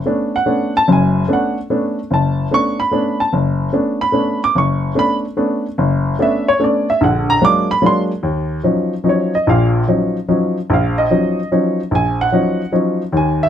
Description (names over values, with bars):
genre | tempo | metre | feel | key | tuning
jazz | 147 BPM | 3/4 | swing 67% on 8ths | B dorian, Eb minor from 8.2 s | A4 = 439 Hz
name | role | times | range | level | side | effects
dark baby grand piano | solo | 0.1-13.5 s | F#1 to D6 | -14 LUFS | equal | none
room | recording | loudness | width
light reverb | close, detailed microphones | -14 LUFS | side -9 dB against mid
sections
0.0-8.2 A section; 8.2-13.5 A section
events
none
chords
0.0 Bm9; 7.0 A#7b13; 8.2 Ebm9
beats
0.05 0.46 | 0.87 1.28 1.69 | 2.10 2.50 2.91 | 3.32 3.73 4.14 | 4.55 4.96 5.37 | 5.77 6.18 6.59 | 7.00 7.41 7.82 | 8.23 8.64 9.05 | 9.46 9.87 10.27 | 10.68 11.09 11.50 | 11.91 12.31 12.72 | 13.13